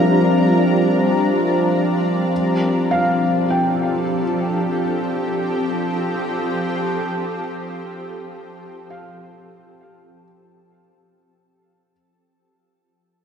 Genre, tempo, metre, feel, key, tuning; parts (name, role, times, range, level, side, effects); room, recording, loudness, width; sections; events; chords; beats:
ambient; free time; F major; A4 = 440 Hz
shimmering ambient pad; sustained chords; 0.0-11.9 s; F3 to Bb4; -20 LUFS; equal; chorus, built-in reverb
felt-muted upright piano; arpeggios; 0.0-11.9 s; E5 to G5; -27 LUFS; equal; diffuse ambient delay
analog drone; drone; 0.0-12.0 s; F3 to C4; -21 LUFS; equal; chorus
wet lush hall reverb, RT60 2.7 s; dark, warm production; -17 LUFS; side -7 dB against mid
0.0-11.9 A section
fade-out 0.0-11.9
0.0 Gm7; 2.3 Fadd9
free time